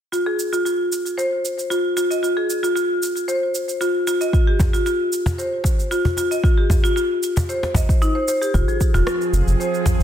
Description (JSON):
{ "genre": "organic downtempo", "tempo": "114 BPM", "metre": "4/4", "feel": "straight", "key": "F minor pentatonic", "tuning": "A4 = 445 Hz", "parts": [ { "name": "marimba with hard mallets", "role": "arpeggios", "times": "0.1-9.7 s", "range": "Eb4 to Eb5", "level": "-20 LUFS", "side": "left 1 dB", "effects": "low-pass filter, ping-pong delay" }, { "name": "electronic cabasa and rim click", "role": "drums", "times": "0.1-10.0 s", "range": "none", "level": "-30 LUFS", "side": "right 3 dB", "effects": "overdrive" }, { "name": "electronic kick drum", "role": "drums", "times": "4.3-10.0 s", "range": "none", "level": "-18 LUFS", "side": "equal", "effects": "overdrive" }, { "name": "cajon", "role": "percussion", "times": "4.6-10.0 s", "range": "none", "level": "-21 LUFS", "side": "equal", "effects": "none" }, { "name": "bowed-like drone", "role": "sustained chords", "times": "8.8-10.0 s", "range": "F3 to Ab4", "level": "-26 LUFS", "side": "right 4 dB", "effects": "built-in reverb, sidechain pumping" }, { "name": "warm sub bass", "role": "bass", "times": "8.5-10.0 s", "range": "Eb1 to F1", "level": "-18 LUFS", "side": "equal", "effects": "sidechain pumping" } ], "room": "light reverb", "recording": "dense, heavily limited modern master", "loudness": "-18 LUFS", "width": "side -10 dB against mid", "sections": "0.1-8.5 A section; 8.5-10.0 B section", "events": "none", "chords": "0.1 N.C.; 8.5 Fm" }